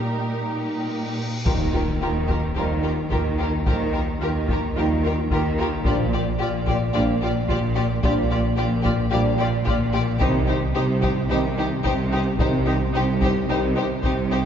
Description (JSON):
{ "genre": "cinematic, epic orchestral film score", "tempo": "110 BPM", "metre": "4/4", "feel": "straight", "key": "unclear", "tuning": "A4 = 439 Hz", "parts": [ { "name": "warm symphonic violin section", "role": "melody", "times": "0.0-14.4 s", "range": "Bb4 to D5", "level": "-31 LUFS", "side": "left 3 dB", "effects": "none" }, { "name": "warm symphonic violin section", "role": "second line", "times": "0.0-14.4 s", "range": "G4", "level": "-30 LUFS", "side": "left 3 dB", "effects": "none" }, { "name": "warm symphonic viola section", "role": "accompaniment", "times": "0.0-14.4 s", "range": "Eb4 to F4", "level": "-31 LUFS", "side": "right 1 dB", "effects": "none" }, { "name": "warm French horn section", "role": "sustained chords", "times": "0.0-13.7 s", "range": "G3 to Eb4", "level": "-32 LUFS", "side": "left 1 dB", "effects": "none" }, { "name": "warm symphonic cello section", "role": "bass", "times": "0.0-14.5 s", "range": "Bb2 to Eb3", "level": "-26 LUFS", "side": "right 1 dB", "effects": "none" }, { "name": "cymbal swell and impact", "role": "sound effects", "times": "0.8-3.7 s", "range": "none", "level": "-33 LUFS", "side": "left 1 dB", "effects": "none" }, { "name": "dark trombone section", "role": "sustained chords", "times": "1.5-13.7 s", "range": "Eb3 to G3", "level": "-33 LUFS", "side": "right 2 dB", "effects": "none" }, { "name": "rich chamber double bass section", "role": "bass", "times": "1.5-14.5 s", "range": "Bb1 to Eb2", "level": "-25 LUFS", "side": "right 1 dB", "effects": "none" }, { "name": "solo taiko drums", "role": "drums", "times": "1.5-14.5 s", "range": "none", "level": "-27 LUFS", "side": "equal", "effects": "none" } ], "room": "wet scoring stage reverb, RT60 2.1 s", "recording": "heard from further back in the room, nothing above 7.8 kHz", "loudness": "-20 LUFS", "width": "side -8 dB against mid", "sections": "0.0-1.5 A section; 1.5-14.5 B section", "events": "build-up 0.0-1.5; cymbal swell 0.8-1.5; impact 1.5-3.7", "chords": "0.0 Eb/Bb; 1.5 Ebadd9; 5.9 Bb6; 10.2 Cm", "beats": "0.35 0.91 | 1.46 2.02 2.57 3.12 | 3.67 4.22 4.76 5.31 | 5.86 6.40 6.95 7.49 | 8.04 8.58 9.13 9.67 | 10.22 10.76 11.31 11.85 | 12.40 12.95 13.49 14.04" }